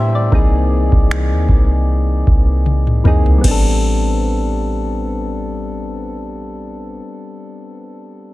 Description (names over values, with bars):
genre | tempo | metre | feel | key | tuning
contemporary R&B | 77 BPM | 4/4 | swing 54% on 16ths | unclear | A4 = 440 Hz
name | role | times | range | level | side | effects
soft electric-piano-like synth keys | accompaniment | 0.0-8.3 s | D#3 to E5 | -21 LUFS | left 2 dB | chorus
soft 808-style bass | bass | 0.0-7.0 s | A1 to A2 | -16 LUFS | equal | none
downlifter | sound effects | 0.0-3.4 s | none | -37 LUFS | equal | none
booming analog drum machine | drums | 0.3-3.6 s | crash cymbal, finger snaps, kick drum, toms | -15 LUFS | equal | soft clipping on snare
room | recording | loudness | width
little or no reverb | dense, heavily limited modern master | -13 LUFS | side -17 dB against mid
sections
0.0-3.4 A section; 3.4-6.6 B section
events
drum fill 2.7-3.4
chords
0.3 C7alt; 3.4 Am11